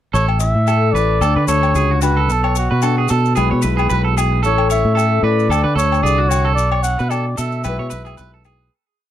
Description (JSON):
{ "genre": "highlife guitar band", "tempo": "112 BPM", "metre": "4/4", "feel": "swing 55% on 16ths", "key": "A major", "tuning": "A4 = 439 Hz", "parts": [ { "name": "trumpet with cup mute", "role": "melody", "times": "0.1-8.4 s", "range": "F#4 to F#5", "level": "-20 LUFS", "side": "equal", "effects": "none" }, { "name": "nylon-string guitar", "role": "accompaniment", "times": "0.1-8.7 s", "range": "A2 to B4", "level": "-24 LUFS", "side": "left 8 dB", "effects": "none" }, { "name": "clean electric guitar", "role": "arpeggios", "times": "0.1-8.7 s", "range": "F#4 to C#5", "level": "-22 LUFS", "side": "right 9 dB", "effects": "tape echo" }, { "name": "fingered electric bass", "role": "bass", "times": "0.1-8.7 s", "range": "A1 to D3", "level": "-17 LUFS", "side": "equal", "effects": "none" }, { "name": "maracas", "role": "percussion", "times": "0.1-8.6 s", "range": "none", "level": "-31 LUFS", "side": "left 22 dB", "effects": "none" }, { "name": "agogo bells", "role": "percussion", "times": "0.3-8.6 s", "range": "none", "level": "-26 LUFS", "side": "left 22 dB", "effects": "none" } ], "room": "little or no reverb", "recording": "dry, close 1970s-style studio recording", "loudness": "-14 LUFS", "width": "side -11 dB against mid", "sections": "0.1-8.7 groove", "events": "fade-out 6.6-8.7", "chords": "0.1 A5; 1.2 D; 2.3 Bm7; 3.4 Eadd9/B; 4.4 A; 5.5 D; 6.6 Bm7; 7.6 Eadd9/B" }